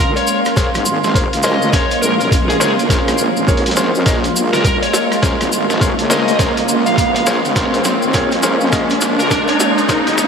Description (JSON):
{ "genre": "glitch hop", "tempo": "103 BPM", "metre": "4/4", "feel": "swing 62% on 16ths", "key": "Bb minor", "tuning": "A4 = 441 Hz", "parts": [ { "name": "smooth overdriven lead guitar", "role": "melody", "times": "0.0-9.7 s", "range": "Ab4 to F5", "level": "-21 LUFS", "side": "equal", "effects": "analog delay" }, { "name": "warbly tape-like pad", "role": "sustained chords", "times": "0.0-10.3 s", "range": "Ab3 to F4", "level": "-21 LUFS", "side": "right 1 dB", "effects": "chorus, built-in reverb, phaser, sidechain pumping" }, { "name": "wobble bass", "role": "bass", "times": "0.0-10.3 s", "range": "Ab1 to F2", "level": "-21 LUFS", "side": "equal", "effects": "chorus, high-pass filter" }, { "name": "riser", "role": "sound effects", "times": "1.9-10.3 s", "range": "none", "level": "-22 LUFS", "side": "equal", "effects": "none" }, { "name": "granular cloud pad", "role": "texture", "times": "0.0-10.3 s", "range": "Bb4 to C6", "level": "-22 LUFS", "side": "right 1 dB", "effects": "built-in reverb, sidechain pumping" }, { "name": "boom bap sampler-style drum kit", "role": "drums", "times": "0.2-10.3 s", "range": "hi-hat, rim click, snare drum", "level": "-22 LUFS", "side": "equal", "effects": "high-pass filter on hats, high-pass filter on toms, high-pass filter on snare, high-pass filter on room" }, { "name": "cabasa", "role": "percussion", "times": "0.2-10.3 s", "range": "none", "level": "-25 LUFS", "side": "left 1 dB", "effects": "none" }, { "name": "bright grand piano", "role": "stabs", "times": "0.6-10.0 s", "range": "Db4 to Eb5", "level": "-21 LUFS", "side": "left 2 dB", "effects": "sidechain pumping, low-pass filter, analog delay" }, { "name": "electronic kick drum", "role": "drums", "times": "0.6-10.0 s", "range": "none", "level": "-18 LUFS", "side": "equal", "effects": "none" } ], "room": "wet huge ambient reverb, RT60 8.0 s", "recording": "dreamy mix soaked in reverb, vinyl crackle, high-pass filter", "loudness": "-12 LUFS", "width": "side -6 dB against mid", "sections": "0.0-10.3 A section", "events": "build-up 0.0-10.3; drum fill 0.0-10.3; riser 1.9-10.3", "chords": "0.0 Bbm9", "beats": "| 0.57 1.15 1.73 2.32 | 2.90 3.48 4.06 4.65 | 5.23 5.81 6.39 6.98 | 7.56 8.14 8.72 9.31 | 9.89" }